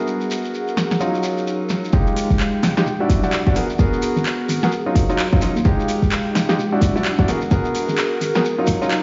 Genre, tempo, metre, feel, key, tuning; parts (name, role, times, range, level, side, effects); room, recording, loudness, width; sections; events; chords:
UK garage, two-step garage; 129 BPM; 4/4; swing 60% on 16ths; A4 = 438 Hz
bright concert grand piano; stabs; 0.0-8.9 s; Gb3 to Bb4; -24 LUFS; equal; low-pass filter, delay
warbly tape-like pad; texture; 0.0-9.0 s; Gb3 to Gb5; -29 LUFS; equal; chorus, built-in reverb, sidechain pumping
shekere; percussion; 0.1-9.0 s; -36 LUFS; equal
house drum kit; drums; 0.8-9.0 s; handclaps, hi-hat, snare drum; -26 LUFS; equal; studio reverb
organ-like FM bass; bass; 1.9-8.8 s; Eb1 to Eb2; -30 LUFS; equal; tube saturation, high-pass filter
electronic kick drum; drums; 1.9-8.8 s; -20 LUFS; equal; studio reverb
moderate lush hall reverb, RT60 1.7 s, digital ambience; played on a big sound system in a bare room, stone room reverb, vinyl crackle, high-pass filter, nothing above 7.5 kHz; -19 LUFS; mono
0.0-1.9 A section; 1.9-9.0 B section
build-up 1.9-9.0
0.0 Abm9; 1.0 Ebm9; 1.9 Fm9; 2.9 Em9; 3.6 Abm9; 4.7 Ebm9; 5.7 Fm9; 6.6 Em9; 7.3 Abm9; 8.4 Ebm9